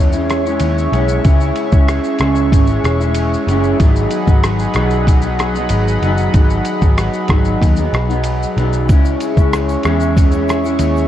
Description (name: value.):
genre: indie pop, bedroom pop.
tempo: 94 BPM.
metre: 4/4.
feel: straight.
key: C# minor.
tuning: A4 = 440 Hz.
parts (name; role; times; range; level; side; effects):
electric guitar through a small old amp; accompaniment; 0.0-11.1 s; C#3 to E4; -18 LUFS; left 1 dB; lush chorus, warbly pitch drift.
warm analog pad; sustained chords; 0.0-11.1 s; G#4 to C#6; -21 LUFS; right 1 dB; chorus.
vintage muted picked electric bass; bass; 0.0-11.1 s; E1 to E2; -17 LUFS; equal; none.
lo-fi sampler-style drum kit; drums; 0.1-11.1 s; kick drum, ride cymbal, rim click, shaker; -15 LUFS; equal; none.
egg shaker; percussion; 8.9-11.1 s; none; -48 LUFS; right 7 dB; none.
room: light reverb.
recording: cassette tape.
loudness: -12 LUFS.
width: side -11 dB against mid.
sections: 0.0-11.1 A section.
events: none.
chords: 0.0 C#m; 3.8 G#m7; 8.9 C#m.